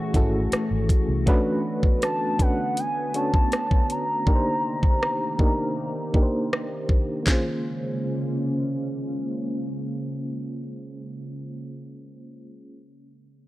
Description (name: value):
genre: contemporary R&B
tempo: 80 BPM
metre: 4/4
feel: straight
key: unclear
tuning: A4 = 440 Hz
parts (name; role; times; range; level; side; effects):
- gliding portamento lead; melody; 0.0-6.5 s; Gb5 to Bb5; -28 LUFS; equal; chorus, low-pass filter, tape echo
- FM electric piano with tremolo; accompaniment; 0.0-12.8 s; A3 to C#5; -28 LUFS; equal; low-pass filter
- glassy FM pad; sustained chords; 0.0-11.0 s; C3 to Gb4; -31 LUFS; equal; ensemble chorus, built-in reverb, low-pass filter
- vintage muted fingered electric bass; bass; 0.1-1.2 s; Ab1 to C2; -25 LUFS; equal; none
- trap drum kit; drums; 0.1-7.4 s; handclaps, hi-hat, kick drum, rim click, snare drum; -21 LUFS; equal; none
room: digital ambience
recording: dry, gritty hardware recording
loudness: -22 LUFS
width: side -17 dB against mid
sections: 0.0-7.3 A section; 7.3-10.3 B section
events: filter sweep 0.0-7.3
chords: 0.0 Gbm9; 1.3 Bm9; 4.3 Cm9; 7.3 Bbm9